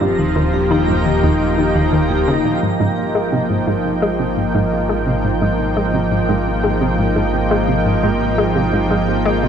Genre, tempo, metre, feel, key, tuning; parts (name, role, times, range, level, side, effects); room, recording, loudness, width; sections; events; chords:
ambient, sequencer-driven space music; 86 BPM; 4/4; straight; Ab major; A4 = 440 Hz
lush unison pad; sustained chords; 0.0-9.5 s; F3 to G5; -18 LUFS; right 1 dB; chorus
vibraphone with medium hard mallets; arpeggios; 0.0-9.5 s; Eb4 to C5; -25 LUFS; left 3 dB; auto-pan, analog delay
analog pluck; riff; 0.0-9.5 s; Eb2 to Ab3; -19 LUFS; equal; chorus, analog delay
fat analog bass; bass; 0.0-9.5 s; Eb1 to Ab1; -23 LUFS; equal
twinkling granular texture; texture; 0.0-2.6 s; Bb5; -31 LUFS; right 3 dB; built-in reverb
wet concert hall reverb, RT60 2.2 s; dark, warm production; -14 LUFS; side -8 dB against mid
0.0-2.6 A section; 2.6-9.5 B section
0.0 Eb; 2.6 Ab6